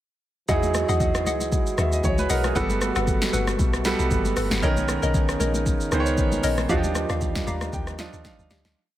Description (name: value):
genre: amapiano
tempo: 116 BPM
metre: 4/4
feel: swing 55% on 16ths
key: unclear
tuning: A4 = 441 Hz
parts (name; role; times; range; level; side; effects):
- clear concert grand piano; accompaniment; 0.5-8.8 s; D#3 to A#5; -26 LUFS; right 4 dB; none
- mellow French horn section; sustained chords; 0.5-8.7 s; B2 to A#4; -32 LUFS; left 1 dB; none
- hollow square pluck; stabs; 0.5-8.7 s; G4 to F#5; -30 LUFS; left 4 dB; chorus, digital delay
- deep log drum bass; bass; 0.5-8.8 s; G1 to E2; -27 LUFS; equal; none
- deep house drum kit; drums; 0.5-8.8 s; hi-hat, kick drum, rim click, shaker, snare drum; -26 LUFS; equal; none
- congas; percussion; 0.5-8.8 s; none; -34 LUFS; left 3 dB; none
room: light reverb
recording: none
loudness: -21 LUFS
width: side -13 dB against mid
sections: 0.5-8.8 drop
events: drop 0.5-8.8; fade-out 6.7-8.8; grand piano fill 7.2-8.8; drum fill 8.2-8.8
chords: 0.5 Emaj9; 2.6 Gmaj9; 4.6 Bmaj9; 6.7 D#maj9